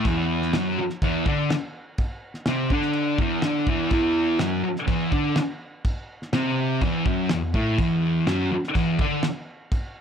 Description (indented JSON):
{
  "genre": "garage rock duo or trio",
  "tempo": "124 BPM",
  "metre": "4/4",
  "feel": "straight",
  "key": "unclear",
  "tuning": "A4 = 440 Hz",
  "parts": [
    { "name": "thick fuzz guitar", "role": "riff", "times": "0.0-9.2 s", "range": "E2 to D4", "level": "-22 LUFS", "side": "equal", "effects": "distortion" },
    { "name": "cloth-damped thuddy drum kit", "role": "drums", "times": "0.1-9.8 s", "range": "crash cymbal, kick drum, snare drum", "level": "-27 LUFS", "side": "equal", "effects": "none" }
  ],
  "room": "light reverb, small room ambience",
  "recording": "none",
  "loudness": "-22 LUFS",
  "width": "side -8 dB against mid",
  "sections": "0.0-10.0 A section",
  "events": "none",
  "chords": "0.0 E7sus2"
}